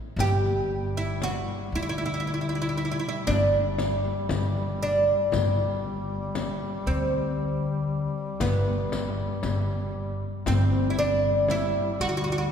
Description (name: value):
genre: Turkish makam ensemble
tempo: 117 BPM (eighths)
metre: 10/8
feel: straight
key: G makam rast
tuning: A4 = 441 Hz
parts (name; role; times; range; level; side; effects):
- oud; melody; 0.2-12.5 s; B3 to G4; -27 LUFS; right 1 dB; none
- upright bass; bass; 0.2-12.5 s; G1 to D2; -28 LUFS; left 1 dB; none
- mellow duduk; drone; 0.2-12.5 s; G3; -34 LUFS; left 1 dB; none
- frame drum; percussion; 0.2-11.7 s; none; -35 LUFS; left 4 dB; none
- riq; percussion; 0.2-11.7 s; none; -39 LUFS; left 4 dB; none
room: wet church reverb, RT60 2.7 s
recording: recorded in a church or concert hall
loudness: -24 LUFS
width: side -8 dB against mid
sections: 0.2-12.5 A section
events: none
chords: none